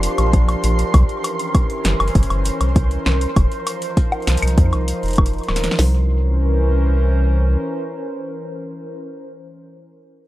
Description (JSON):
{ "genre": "IDM", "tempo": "99 BPM", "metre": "4/4", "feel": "straight", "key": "unclear", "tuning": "A4 = 440 Hz", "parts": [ { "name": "warbly tape-like pad", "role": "sustained chords", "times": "0.0-9.0 s", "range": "E3 to C5", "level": "-24 LUFS", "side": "equal", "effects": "chorus, built-in reverb" }, { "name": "round analog bass", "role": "bass", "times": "0.0-7.6 s", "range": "Eb1 to F2", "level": "-17 LUFS", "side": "equal", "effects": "tube saturation" }, { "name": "electro analog drum machine", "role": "drums", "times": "0.0-5.8 s", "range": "hi-hat, snare drum, woodblock", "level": "-24 LUFS", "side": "left 1 dB", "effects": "none" }, { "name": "flickering grainy texture", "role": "texture", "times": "0.0-5.8 s", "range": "C6", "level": "-30 LUFS", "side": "right 2 dB", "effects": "built-in reverb, sidechain pumping" }, { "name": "glitchy drum kit", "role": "drums", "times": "0.3-5.9 s", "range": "hi-hat, kick drum, snare drum", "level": "-16 LUFS", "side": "equal", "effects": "none" } ], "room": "moderate studio reverb, RT60 0.5 s", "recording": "rough home demo mix", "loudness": "-15 LUFS", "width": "side -16 dB against mid", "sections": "0.0-5.8 A section; 5.8-8.2 B section", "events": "none", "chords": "0.0 Gm7; 0.9 C7b9; 3.4 F7sus4; 5.8 C7b9" }